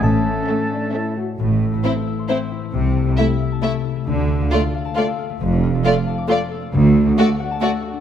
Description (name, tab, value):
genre	cinematic, playful, whimsical film cue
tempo	135 BPM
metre	3/4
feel	straight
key	A minor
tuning	A4 = 439 Hz
part	music box	melody	0.0-1.1 s	A5	-32 LUFS	equal	none
part	dark clarinet	second line	0.0-1.1 s	C#4	-27 LUFS	left 3 dB	none
part	warm oboe	second line	0.0-1.1 s	A4	-26 LUFS	right 1 dB	none
part	dark French horn section	sustained chords	0.0-1.3 s	A3 to F#4	-28 LUFS	left 4 dB	none
part	concert harp	arpeggios	0.0-8.0 s	A2 to D6	-24 LUFS	left 10 dB	none
part	rich studio cello section	bass	0.0-7.1 s	D2 to A3	-21 LUFS	right 2 dB	none
part	warm chamber double bass section	bass	0.0-7.1 s	F1 to D2	-22 LUFS	right 3 dB	none
part	rich studio violin section	melody	0.5-7.7 s	C5 to E5	-29 LUFS	left 1 dB	none
part	warm symphonic violin section	second line	0.5-7.7 s	C#4 to F#4	-26 LUFS	left 3 dB	none
part	warm studio viola section	accompaniment	0.5-7.7 s	A3 to C4	-23 LUFS	right 1 dB	none
room	moderate scoring stage reverb, RT60 1.8 s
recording	none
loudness	-17 LUFS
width	side -9 dB against mid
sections	0.0-1.4 A section; 1.4-8.0 B section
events	none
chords	0.0 A; 1.4 Am; 2.7 Am/C; 4.1 Dm; 5.4 Dm/F; 6.7 D